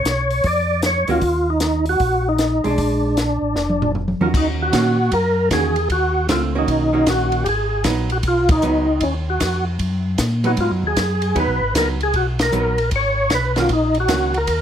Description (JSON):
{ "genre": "soul jazz organ trio", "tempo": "154 BPM", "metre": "4/4", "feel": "swing 66% on 8ths", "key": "Eb minor", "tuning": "A4 = 441 Hz", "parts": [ { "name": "percussive tonewheel organ", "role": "melody", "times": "0.0-14.6 s", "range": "Db4 to D5", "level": "-19 LUFS", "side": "equal", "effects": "slow rotary speaker, chorus vibrato, plate reverb" }, { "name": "mellow tonewheel organ", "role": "bass", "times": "0.0-14.6 s", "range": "F1 to Bb2", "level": "-22 LUFS", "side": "equal", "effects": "chorus vibrato, slow rotary speaker" }, { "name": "compact cocktail drum kit", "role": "drums", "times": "0.1-14.6 s", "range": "crash cymbal, hi-hat, kick drum, ride cymbal, snare drum, toms", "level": "-24 LUFS", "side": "equal", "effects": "none" }, { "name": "archtop guitar, miked and amplified", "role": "accompaniment", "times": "1.1-14.3 s", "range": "D3 to Bb4", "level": "-23 LUFS", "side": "right 4 dB", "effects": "none" } ], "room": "moderate small room reverb, RT60 0.5 s", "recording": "none", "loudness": "-16 LUFS", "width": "side -9 dB against mid", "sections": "0.0-4.3 A section; 4.3-14.6 A section", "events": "drum fill 3.6-4.3; band accent 8.4, 12.3", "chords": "0.0 Bb(#9) (rootless); 1.2 Ebm; 2.8 Bb7; 4.3 Ebm7; 7.5 Abm7; 9.0 Ebm; 10.6 Abm7; 13.7 Ebm7" }